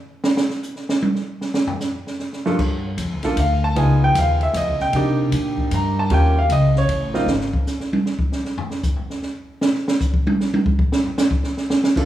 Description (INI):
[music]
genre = jazz piano trio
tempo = 154 BPM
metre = 3/4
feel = swing 65% on 8ths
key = G minor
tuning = A4 = 438 Hz
[part]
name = open jazz drum kit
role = drums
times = 0.2-12.1 s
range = crash cymbal, hi-hat, kick drum, ride cymbal, snare drum, toms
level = -21 LUFS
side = right 1 dB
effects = none
[part]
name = clear baby grand piano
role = melody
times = 2.5-7.3, 12.0-12.1 s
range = G2 to Bb5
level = -20 LUFS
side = right 1 dB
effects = none
[part]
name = upright bass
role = bass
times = 2.6-7.5, 12.0-12.1 s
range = G1 to C3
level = -19 LUFS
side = left 1 dB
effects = none
[sound]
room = moderate recital hall reverb, RT60 1.4 s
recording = recorded in a church or concert hall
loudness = -18 LUFS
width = side -12 dB against mid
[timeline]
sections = 0.0-2.6 A section; 2.6-12.0 A section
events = grand piano solo 0.0-12.0; drum solo 0.0-2.6, 7.3-12.0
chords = 0.2 N.C.; 2.6 G7(no3); 3.8 C#9; 4.9 Cm7; 6.1 Eb7; 7.3 N.C.